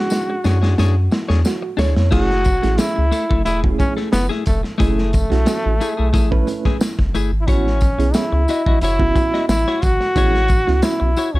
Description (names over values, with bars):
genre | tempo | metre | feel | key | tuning
funk | 90 BPM | 4/4 | straight | F# minor | A4 = 440 Hz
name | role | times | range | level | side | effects
bright trombone | melody | 0.0-11.4 s | A3 to F#4 | -21 LUFS | equal | plate reverb
reed electric piano | stabs | 0.0-11.1 s | G#3 to C#5 | -24 LUFS | right 6 dB | fast tremolo
clean electric guitar | accompaniment | 0.1-11.4 s | A3 to D#5 | -24 LUFS | left 5 dB | none
crunchy breakbeat drum kit | drums | 0.1-11.3 s | crash cymbal, hi-hat, kick drum, snare drum | -20 LUFS | equal | none
tambourine | percussion | 0.1-11.3 s | none | -36 LUFS | left 3 dB | none
round analog bass | bass | 0.5-11.4 s | E1 to F#2 | -18 LUFS | equal | none
room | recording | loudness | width
little or no reverb | dark, warm production | -15 LUFS | side -18 dB against mid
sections
0.0-2.1 A section; 2.1-11.4 B section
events
drum fill 0.0-2.1; reed electric piano fill 1.1-2.1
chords
0.0 E13 (rootless); 2.1 F#m9; 7.5 A6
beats
0.12 0.79 1.46 | 2.13 2.79 3.46 4.13 | 4.80 5.47 6.14 6.81 | 7.48 8.15 8.82 9.49 | 10.16 10.83